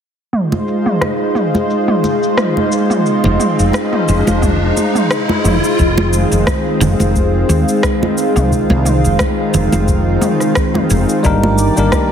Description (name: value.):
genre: sunset chillout.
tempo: 88 BPM.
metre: 4/4.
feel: swing 55% on 16ths.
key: F dorian.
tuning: A4 = 440 Hz.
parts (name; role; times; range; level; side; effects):
lush unison pad; sustained chords; 0.3-12.1 s; Eb3 to D5; -15 LUFS; equal; chorus.
deep house drum kit; drums; 0.3-12.1 s; rim click, shaker, toms; -20 LUFS; right 1 dB; overdrive, low-pass filter on toms, studio reverb, low-pass filter on perc, low-pass filter on snare.
riser; sound effects; 2.2-5.8 s; none; -22 LUFS; left 1 dB; none.
congas; percussion; 0.5-12.1 s; none; -21 LUFS; right 1 dB; none.
woody fretless electric bass; bass; 3.2-11.9 s; F1 to Eb2; -15 LUFS; equal; lush chorus.
electronic kick drum; drums; 4.4-12.1 s; none; -18 LUFS; equal; studio reverb.
bell-like tine electric piano; accompaniment; 11.2-12.1 s; G3 to Bb4; -14 LUFS; left 1 dB; auto-pan, ping-pong delay.
room: moderate plate reverb, RT60 2.0 s, digital ambience.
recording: heavily compressed radio sound, multiband compression.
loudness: -12 LUFS.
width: side -8 dB against mid.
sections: 0.3-5.8 A section; 5.8-12.1 B section.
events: filter sweep on drum 0.3-5.8; riser 2.2-5.8; kick drops out 5.1-5.8.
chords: 0.3 Fm7; 11.2 Ebmaj7/G.